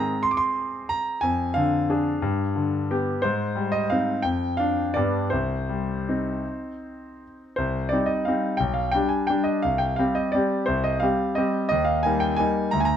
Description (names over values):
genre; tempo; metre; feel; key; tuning
classical, piano waltz; 153-190 BPM; 3/4; rubato; C minor; A4 = 441 Hz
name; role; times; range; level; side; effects
bright concert grand piano; solo; 0.0-13.0 s; B1 to D6; -22 LUFS; equal; none
room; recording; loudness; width
light reverb; dark, warm production; -22 LUFS; side -9 dB against mid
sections
0.0-7.6 A section; 7.6-13.0 A section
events
none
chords
0.0 Ab; 1.2 Ddim/F; 2.2 G; 3.2 Abmaj7; 4.2 Dmadd11/F; 4.9 G; 5.3 Cm; 8.6 G/B; 9.6 Cm; 11.7 Eb